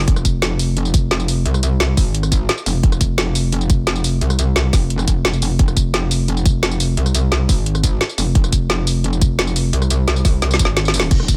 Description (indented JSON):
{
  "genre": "dark technical drum and bass",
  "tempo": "174 BPM",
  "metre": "4/4",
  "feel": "straight",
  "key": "F minor",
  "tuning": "A4 = 440 Hz",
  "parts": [
    { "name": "metallic wobble bass", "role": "bass", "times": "0.0-11.4 s", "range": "F1 to C2", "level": "-20 LUFS", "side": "equal", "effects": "chorus, sidechain pumping" },
    { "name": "drum and bass drum kit", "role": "drums", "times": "0.1-11.4 s", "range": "crash cymbal, hi-hat, rim click, snare drum, tambourine", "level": "-22 LUFS", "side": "equal", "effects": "none" },
    { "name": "electronic kick drum", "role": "drums", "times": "0.1-11.4 s", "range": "none", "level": "-18 LUFS", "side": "equal", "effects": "none" }
  ],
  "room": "little or no reverb",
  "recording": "none",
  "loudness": "-17 LUFS",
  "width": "mono",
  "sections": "0.0-11.1 A section",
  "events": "drop 0.0-11.1; drum fill 10.4-11.1",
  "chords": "none"
}